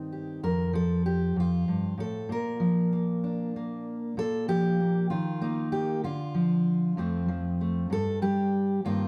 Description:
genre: folk, solo fingerstyle acoustic guitar.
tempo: 64 BPM (dotted quarters).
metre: 6/8.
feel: straight.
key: Bb major.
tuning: A4 = 440 Hz.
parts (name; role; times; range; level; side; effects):
fingerpicked steel-string acoustic guitar; solo; 0.0-9.1 s; F2 to Bb4; -28 LUFS; equal; none.
room: wet large studio reverb, RT60 1.2 s.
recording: band playing live in one room.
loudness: -28 LUFS.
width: mono.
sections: 0.0-4.2 A section; 4.2-9.1 B section.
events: none.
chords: 0.4 F7; 2.3 Bb; 4.2 Bb5; 5.1 Ebsus2; 6.0 Dm; 7.0 F; 7.9 N.C..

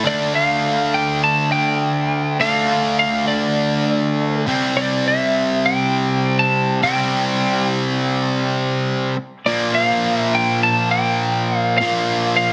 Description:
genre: rock.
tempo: 102 BPM.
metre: 4/4.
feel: straight.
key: D minor.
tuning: A4 = 440 Hz.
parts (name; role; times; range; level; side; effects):
distorted electric guitar; riff; 0.0-12.5 s; Bb2 to D4; -21 LUFS; equal; distortion.
lightly driven lead guitar; melody; 0.1-12.5 s; D5 to A5; -21 LUFS; equal; none.
room: moderate large studio reverb, RT60 1.1 s, digital ambience.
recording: dense, heavily limited modern master.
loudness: -18 LUFS.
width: mono.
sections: 0.0-12.5 A section.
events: none.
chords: 0.0 Dm; 4.5 C5; 9.5 Bb5.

